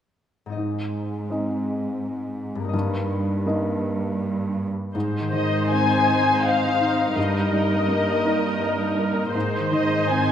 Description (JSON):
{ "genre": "cinematic, emotional film score for orchestra", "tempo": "82 BPM", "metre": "3/4", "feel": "rubato", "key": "unclear", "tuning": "A4 = 442 Hz", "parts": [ { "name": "concert harp", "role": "arpeggios", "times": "0.5-10.3 s", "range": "G2 to Eb5", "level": "-30 LUFS", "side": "left 4 dB", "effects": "none" }, { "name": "warm baby grand piano", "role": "accompaniment", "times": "0.6-10.3 s", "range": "G2 to Eb5", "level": "-26 LUFS", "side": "equal", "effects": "none" }, { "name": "muted studio cello section", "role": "bass", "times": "0.6-10.3 s", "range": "G2 to Ab2", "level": "-28 LUFS", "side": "right 4 dB", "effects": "none" }, { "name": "muted studio viola section", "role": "accompaniment", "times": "5.0-10.3 s", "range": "Eb4 to C5", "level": "-26 LUFS", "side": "right 2 dB", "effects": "none" }, { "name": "muted studio violin section", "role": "melody", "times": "5.3-10.3 s", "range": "Eb5 to Ab5", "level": "-23 LUFS", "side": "left 5 dB", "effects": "none" } ], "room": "wet scoring stage reverb, RT60 1.8 s", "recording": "none", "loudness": "-21 LUFS", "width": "side -9 dB against mid", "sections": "0.6-4.9 A section; 4.9-10.3 B section", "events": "none", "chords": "0.6 Ab; 2.7 Eb/G; 4.9 Ab; 7.2 Eb/G; 9.3 Ab" }